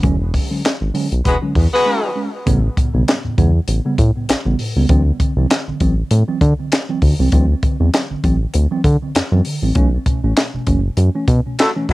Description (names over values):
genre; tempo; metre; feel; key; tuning
funk; 99 BPM; 4/4; swing 56% on 16ths; unclear; A4 = 441 Hz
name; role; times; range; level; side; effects
mellow tine electric piano; stabs; 0.0-11.9 s; A2 to C#4; -21 LUFS; right 2 dB; medium stereo tremolo, cassette tape, analog delay
round analog bass; bass; 0.0-11.9 s; E1 to D3; -15 LUFS; equal; none
compact cocktail drum kit; drums; 0.0-11.9 s; handclaps, hi-hat, kick drum, snare drum; -18 LUFS; equal; cassette tape
clear horn section; second line; 1.3-2.1, 11.6-11.9 s; F#3 to B4; -18 LUFS; left 1 dB; cassette tape, analog delay, plate reverb
room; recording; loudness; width
little or no reverb; home recording on cassette; -14 LUFS; side -19 dB against mid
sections
0.0-2.5 A section; 2.5-11.9 B section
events
break 1.9-2.5; band accent 9.8-11.9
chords
0.0 E13; 2.5 A9; 4.9 D9; 9.8 B9sus4